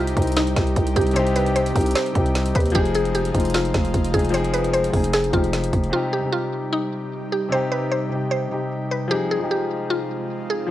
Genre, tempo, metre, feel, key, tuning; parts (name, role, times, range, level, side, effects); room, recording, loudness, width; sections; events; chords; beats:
hip hop, trap; 151 BPM; 4/4; half-time; C minor; A4 = 440 Hz
mallet-like synth pluck; melody; 0.0-10.7 s; Eb4 to C5; -24 LUFS; equal; chorus, low-pass filter
warm concert grand piano; accompaniment; 0.0-10.7 s; C3 to Ab4; -24 LUFS; left 2 dB; low-pass filter
airy breathy pad; sustained chords; 0.0-10.7 s; C3 to G4; -30 LUFS; right 1 dB; chorus
growling 808-style bass; bass; 0.0-5.9 s; F1 to Eb2; -23 LUFS; equal
trap drum kit; drums; 0.1-5.9 s; hi-hat, kick drum, snare drum; -24 LUFS; equal
swell; sound effects; 10.2-10.7 s; -43 LUFS; right 3 dB
little or no reverb; dry, gritty hardware recording, cassette tape; -19 LUFS; side -13 dB against mid
0.0-5.9 A section; 5.9-10.7 B section
0.0 Cm; 2.8 Fm7; 5.9 Cm; 9.1 Fm7
0.37 0.76 | 1.16 1.56 1.96 2.35 | 2.75 3.15 3.54 3.94 | 4.34 4.74 5.13 5.53 | 5.93 6.33 6.72 7.12 | 7.52 7.92 8.31 8.71 | 9.11 9.51 9.90 10.30 | 10.70